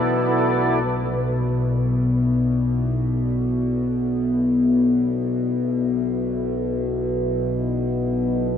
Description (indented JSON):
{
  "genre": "dark ambient drone",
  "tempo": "free time",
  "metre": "none",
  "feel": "none",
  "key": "B minor",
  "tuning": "A4 = 441 Hz",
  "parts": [
    { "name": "deep dark ambient pad", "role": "sustained chords", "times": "0.0-8.6 s", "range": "B3 to D5", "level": "-28 LUFS", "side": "equal", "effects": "chorus, built-in reverb" },
    { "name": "overtone-sweeping drone", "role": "drone", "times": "0.0-8.6 s", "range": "B1 to B2", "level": "-20 LUFS", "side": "left 2 dB", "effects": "chorus, built-in reverb" },
    { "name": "bubbling stepped-filter texture", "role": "texture", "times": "0.0-0.9 s", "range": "B4", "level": "-31 LUFS", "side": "equal", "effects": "chorus, built-in reverb" }
  ],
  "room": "wet lush hall reverb, RT60 3.2 s",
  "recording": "dreamy mix soaked in reverb, cassette tape",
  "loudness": "-19 LUFS",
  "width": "side -8 dB against mid",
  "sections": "0.9-8.6 A section",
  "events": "fade-in on ambient pad 0.9-8.6",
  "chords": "0.0 Bm",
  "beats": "free time"
}